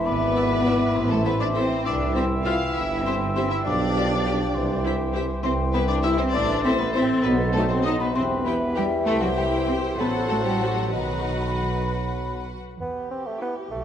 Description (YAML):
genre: cinematic, playful, whimsical film cue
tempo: 66 BPM (dotted quarters)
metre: 6/8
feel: straight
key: E minor from 5.4 s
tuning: A4 = 440 Hz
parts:
  - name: celesta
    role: melody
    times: 0.0-11.8 s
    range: D#5 to F6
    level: -32 LUFS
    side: left 6 dB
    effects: none
  - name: rich chamber violin section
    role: melody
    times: 0.0-13.6 s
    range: D#4 to G5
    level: -32 LUFS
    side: left 4 dB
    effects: none
  - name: mellow cor anglais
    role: second line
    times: 0.0-12.5 s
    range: B4 to E5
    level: -33 LUFS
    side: right 1 dB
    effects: none
  - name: mellow hollow silver concert flute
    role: second line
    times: 0.0-12.5 s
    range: D#5 to B5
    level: -33 LUFS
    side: left 2 dB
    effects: none
  - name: warm clarinet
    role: second line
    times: 0.0-12.5 s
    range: E4 to A4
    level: -33 LUFS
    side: left 3 dB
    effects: none
  - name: warm bassoon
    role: accompaniment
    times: 0.0-13.8 s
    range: E3 to C4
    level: -31 LUFS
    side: right 2 dB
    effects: none
  - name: warm French horn section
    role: sustained chords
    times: 0.1-11.8 s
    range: D#3 to F4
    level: -30 LUFS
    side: left 4 dB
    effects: none
  - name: dark chamber double bass section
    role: bass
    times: 0.1-13.8 s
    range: G1 to E2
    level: -29 LUFS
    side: right 2 dB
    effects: none
  - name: warm chamber cello section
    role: bass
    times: 0.1-13.8 s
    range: D#3 to G4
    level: -28 LUFS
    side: right 1 dB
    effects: none
  - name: warm tuba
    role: bass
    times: 0.1-12.6 s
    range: E1 to C2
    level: -31 LUFS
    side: right 4 dB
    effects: none
  - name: rich symphonic violin section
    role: second line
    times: 0.4-13.6 s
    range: G4 to A5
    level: -36 LUFS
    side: left 4 dB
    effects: none
  - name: warm studio viola section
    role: accompaniment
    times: 0.4-13.6 s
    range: D#4 to A4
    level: -33 LUFS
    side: left 2 dB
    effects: none
room: moderate scoring stage reverb, RT60 1.9 s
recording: dark, warm production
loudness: -21 LUFS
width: side -9 dB against mid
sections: 0.0-12.8 A section; 12.8-13.8 B section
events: none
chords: 0.1 E7/G#; 1.0 Am; 1.9 C; 3.7 G7/B; 4.5 C; 6.3 Am; 7.2 B7b9; 8.2 Em; 9.1 C; 10.0 F#dim/A; 10.9 B; 12.8 Em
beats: | 0.06 0.96 | 1.86 2.76 | 3.66 4.55 | 5.44 6.34 | 7.25 8.15 | 9.06 9.98 | 10.93 11.87 | 12.80 13.71